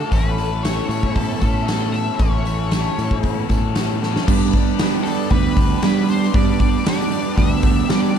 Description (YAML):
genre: rock, shoegaze and dream pop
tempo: 116 BPM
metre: 4/4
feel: straight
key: G major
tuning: A4 = 440 Hz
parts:
  - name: octave-fuzz lead guitar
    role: melody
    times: 0.0-8.2 s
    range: A4 to E5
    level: -29 LUFS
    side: left 1 dB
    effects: distortion, digital delay
  - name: phased string machine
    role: sustained chords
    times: 0.0-4.2 s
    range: A4 to C#6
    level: -33 LUFS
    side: equal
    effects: ensemble chorus, phaser
  - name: clean electric guitar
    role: arpeggios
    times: 0.0-8.2 s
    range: E3 to F#4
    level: -31 LUFS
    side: right 5 dB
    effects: analog chorus, digital delay
  - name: biting overdriven guitar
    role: riff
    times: 0.0-8.2 s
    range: A2 to A4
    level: -26 LUFS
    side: left 14 dB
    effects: wide subtle chorus
  - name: mellow electric guitar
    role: riff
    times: 0.0-8.2 s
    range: D3 to C#5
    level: -23 LUFS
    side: right 15 dB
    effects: reverse reverb
  - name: growling fingered electric bass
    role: bass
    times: 0.1-8.2 s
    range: A1 to G3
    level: -22 LUFS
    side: equal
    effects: overdrive
  - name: huge arena drum kit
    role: drums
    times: 0.1-8.2 s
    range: crash cymbal, hi-hat, kick drum, snare drum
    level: -20 LUFS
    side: equal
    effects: none
  - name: tambourine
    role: percussion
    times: 0.1-4.1 s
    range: none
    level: -43 LUFS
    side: right 10 dB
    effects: none
room: small room ambience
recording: dark, warm production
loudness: -16 LUFS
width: side -8 dB against mid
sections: 0.0-4.3 A section; 4.3-8.2 B section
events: drum fill 4.0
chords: 0.1 Aadd9; 4.3 G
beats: | 0.12 0.64 1.16 1.68 | 2.20 2.72 3.24 3.75 | 4.27 4.79 5.31 5.83 | 6.35 6.87 7.38 7.90